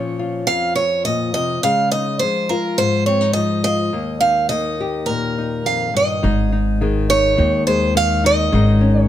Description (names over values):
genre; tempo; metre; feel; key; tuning
acoustic folk duo or small band; 104 BPM; 4/4; straight; Ab major; A4 = 440 Hz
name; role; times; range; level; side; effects
picked steel-string acoustic guitar; melody; 0.0-9.1 s; Bb4 to F5; -18 LUFS; right 2 dB; none
nylon-string guitar; accompaniment; 0.0-9.1 s; Eb2 to G4; -20 LUFS; left 4 dB; none
upright bass; bass; 6.2-9.1 s; Ab1 to Eb2; -18 LUFS; right 1 dB; none
room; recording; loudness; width
light reverb; none; -15 LUFS; side -11 dB against mid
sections
0.0-6.2 A section; 6.2-9.1 B section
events
none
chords
0.0 Bbm; 1.6 Dbadd9; 3.9 Eb; 6.2 Ab5; 8.5 Dbsus2/Ab